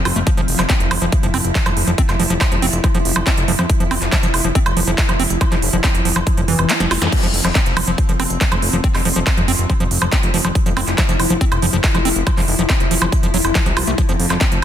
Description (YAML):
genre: psychedelic trance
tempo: 140 BPM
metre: 4/4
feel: straight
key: unclear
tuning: A4 = 440 Hz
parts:
  - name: pulsing gated texture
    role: sustained chords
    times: 0.0-14.6 s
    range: F3 to E4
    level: -24 LUFS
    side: left 1 dB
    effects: chorus, built-in reverb, sidechain pumping
  - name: overdriven acid bass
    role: riff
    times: 0.1-14.4 s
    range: E3 to F4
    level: -22 LUFS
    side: moving between left 2 dB and right 4 dB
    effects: auto-pan, sidechain pumping, digital delay
  - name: fat analog bass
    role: bass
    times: 0.1-14.6 s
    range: F1 to F2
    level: -21 LUFS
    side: equal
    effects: none
  - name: big-room dance drum kit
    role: drums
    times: 0.1-14.6 s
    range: crash cymbal, handclaps, hi-hat, snare drum, woodblock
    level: -20 LUFS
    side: right 2 dB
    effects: overdrive
  - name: electronic kick drum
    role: drums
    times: 0.3-14.5 s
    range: none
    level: -17 LUFS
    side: equal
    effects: overdrive
  - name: zap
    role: sound effects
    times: 7.0-7.1 s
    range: none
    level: -28 LUFS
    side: equal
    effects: none
room: light reverb, digital ambience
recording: dense, heavily limited modern master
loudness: -14 LUFS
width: side -10 dB against mid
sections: 0.0-7.1 A section; 7.1-14.6 A section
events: drop 0.0-7.1, 7.1-14.6; kick drops out 6.7-7.1; drum fill 6.8-7.1; band accent 7.0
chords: 0.0 F5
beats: | 0.27 0.70 1.12 1.55 | 1.98 2.41 2.84 3.27 | 3.70 4.12 4.55 4.98 | 5.41 5.84 6.27 6.70 | 7.12 7.55 7.98 8.41 | 8.84 9.27 9.70 10.12 | 10.55 10.98 11.41 11.84 | 12.27 12.70 13.12 13.55 | 13.98 14.41